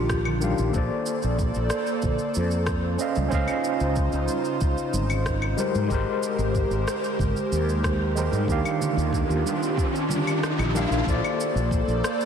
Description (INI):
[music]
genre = sunset chillout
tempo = 93 BPM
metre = 4/4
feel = straight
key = Bb major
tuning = A4 = 437 Hz
[part]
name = overdriven tine electric piano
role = accompaniment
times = 0.0-12.3 s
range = Eb3 to F5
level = -28 LUFS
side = moving between left 7 dB and right 6 dB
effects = fast tremolo, auto-pan, tape echo, slapback echo
[part]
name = airy breathy pad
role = sustained chords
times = 0.0-12.3 s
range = Db3 to D5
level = -28 LUFS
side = right 1 dB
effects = chorus
[part]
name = mellow fretless electric bass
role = bass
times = 0.0-12.0 s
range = Ab1 to Ab2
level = -26 LUFS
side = equal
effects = ensemble chorus
[part]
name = electronic kick drum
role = drums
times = 0.1-11.8 s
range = none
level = -28 LUFS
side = equal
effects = none
[part]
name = electronic rim click, shaker and claves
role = drums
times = 0.1-12.3 s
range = none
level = -34 LUFS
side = equal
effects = slapback echo
[part]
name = congas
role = percussion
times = 0.3-10.9 s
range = none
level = -35 LUFS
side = right 4 dB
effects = none
[part]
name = riser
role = sound effects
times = 7.0-11.1 s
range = none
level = -32 LUFS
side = right 1 dB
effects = slapback echo
[sound]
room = moderate lush hall reverb, RT60 2.4 s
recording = big arena sound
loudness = -22 LUFS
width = side -7 dB against mid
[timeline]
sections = 0.0-11.1 A section; 11.1-12.3 B section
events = riser 7.0-11.1; kick drops out 10.4-11.1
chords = 0.0 Ebmaj9; 0.7 Bbmaj9; 3.0 Dbmaj9; 5.6 Abmaj9; 8.5 Ebmaj9; 11.1 Bbmaj9